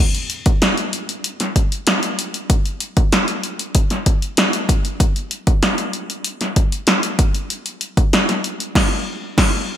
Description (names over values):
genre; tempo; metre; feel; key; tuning
pop; 96 BPM; 4/4; straight; none; none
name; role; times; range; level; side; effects
punchy analog drum machine; drums; 0.1-9.6 s; crash cymbal, hi-hat, kick drum, snare drum; -16 LUFS; equal; gated reverb
room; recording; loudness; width
moderate plate reverb, RT60 2.1 s; bright 1980s-style digital production; -16 LUFS; side -11 dB against mid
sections
0.0-9.8 A section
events
band accent 8.8-9.8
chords
none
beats
0.62 1.24 1.87 | 2.50 3.12 3.75 4.38 | 5.00 5.63 6.25 6.88 | 7.50 8.13 8.75 9.38